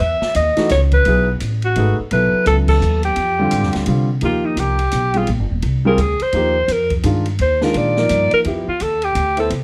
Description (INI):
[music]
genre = modal jazz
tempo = 170 BPM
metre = 3/4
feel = swing 62% on 8ths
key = Eb major from 4.2 s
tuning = A4 = 440 Hz
[part]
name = breathy alto saxophone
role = melody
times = 0.0-9.5 s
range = Eb4 to E5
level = -20 LUFS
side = equal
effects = plate reverb
[part]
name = upright bass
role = bass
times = 0.0-9.6 s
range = Eb1 to C3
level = -22 LUFS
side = equal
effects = none
[part]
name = open jazz drum kit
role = drums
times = 0.2-9.6 s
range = crash cymbal, hi-hat, kick drum, ride cymbal, snare drum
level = -29 LUFS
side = equal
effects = none
[part]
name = dark concert grand piano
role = accompaniment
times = 0.6-9.5 s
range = D3 to C5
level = -22 LUFS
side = equal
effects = none
[sound]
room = light reverb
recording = dark, warm production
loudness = -17 LUFS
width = mono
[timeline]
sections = 0.0-4.2 A section; 4.2-9.6 B section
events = band accent 2.6; alto saxophone solo 4.2-9.6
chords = 0.0 B13sus4; 3.2 Fsus2; 4.2 Ebmaj9; 8.4 Fmaj9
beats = | 0.00 0.35 0.70 | 1.06 1.41 1.76 | 2.11 2.46 2.81 | 3.17 3.52 3.87 | 4.22 4.58 4.93 | 5.28 5.63 5.99 | 6.34 6.69 7.04 | 7.39 7.75 8.10 | 8.45 8.80 9.15 | 9.51